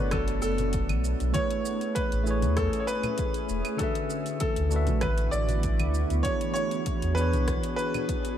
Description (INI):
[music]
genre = sunset chillout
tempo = 98 BPM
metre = 4/4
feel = straight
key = A major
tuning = A4 = 440 Hz
[part]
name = clear grand piano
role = melody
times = 0.0-8.4 s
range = A4 to D5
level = -31 LUFS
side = left 1 dB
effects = tape echo
[part]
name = tine electric piano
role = accompaniment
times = 0.0-8.4 s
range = D3 to E5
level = -32 LUFS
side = moving between left 5 dB and right 7 dB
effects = auto-pan, tape echo
[part]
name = shimmering ambient pad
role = sustained chords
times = 0.0-8.4 s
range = D3 to C#5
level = -34 LUFS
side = right 2 dB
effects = chorus, built-in reverb
[part]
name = warm sub bass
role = bass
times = 0.0-7.6 s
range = E1 to E2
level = -27 LUFS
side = equal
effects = none
[part]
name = deep house drum kit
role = drums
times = 0.1-8.4 s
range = claves, hi-hat, rim click, shaker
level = -38 LUFS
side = right 2 dB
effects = overdrive
[part]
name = electronic kick drum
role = drums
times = 0.1-8.2 s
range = none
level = -32 LUFS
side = equal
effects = overdrive
[part]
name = congas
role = percussion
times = 0.1-8.1 s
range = none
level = -37 LUFS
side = left 3 dB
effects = none
[sound]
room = light reverb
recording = dark, warm production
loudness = -25 LUFS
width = side -10 dB against mid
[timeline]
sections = 0.0-8.4 A section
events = none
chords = 0.0 Bm7; 1.4 Amaj9; 3.8 D69; 6.3 E13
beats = 0.13 0.74 | 1.35 1.97 2.58 3.19 | 3.80 4.42 5.03 5.64 | 6.25 6.86 7.48 8.09